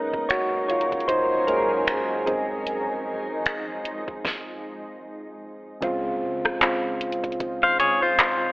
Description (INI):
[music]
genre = contemporary R&B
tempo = 76 BPM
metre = 4/4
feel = swing 58% on 16ths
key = Db major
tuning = A4 = 441 Hz
[part]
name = soft electric-piano-like synth keys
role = accompaniment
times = 0.0-8.5 s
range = Db3 to Db5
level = -25 LUFS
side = equal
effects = chorus
[part]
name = granular cloud pad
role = sustained chords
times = 0.0-8.5 s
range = Db3 to Bb4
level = -32 LUFS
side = equal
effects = built-in reverb
[part]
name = soft 808-style bass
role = bass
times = 0.0-8.2 s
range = F1 to Db3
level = -50 LUFS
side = equal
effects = none
[part]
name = smooth R&B drum kit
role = drums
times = 0.1-8.4 s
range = finger snaps, handclaps, hi-hat, kick drum, rim click, snare drum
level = -25 LUFS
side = equal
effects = none
[part]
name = impact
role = sound effects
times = 5.8-8.5 s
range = none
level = -46 LUFS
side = equal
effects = none
[part]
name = direct-recorded clean electric guitar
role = arpeggios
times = 7.6-8.5 s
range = F4 to F5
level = -19 LUFS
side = left 1 dB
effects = none
[sound]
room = moderate lush hall reverb, RT60 1.8 s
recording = telephone sound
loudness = -22 LUFS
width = side -23 dB against mid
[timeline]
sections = 0.0-5.8 A section; 5.8-8.5 B section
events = synth keys solo 0.0-5.8; stop 4.2-5.8; impact 5.8-8.5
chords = 0.0 Gb6; 2.3 Fm7; 5.8 Dbmaj7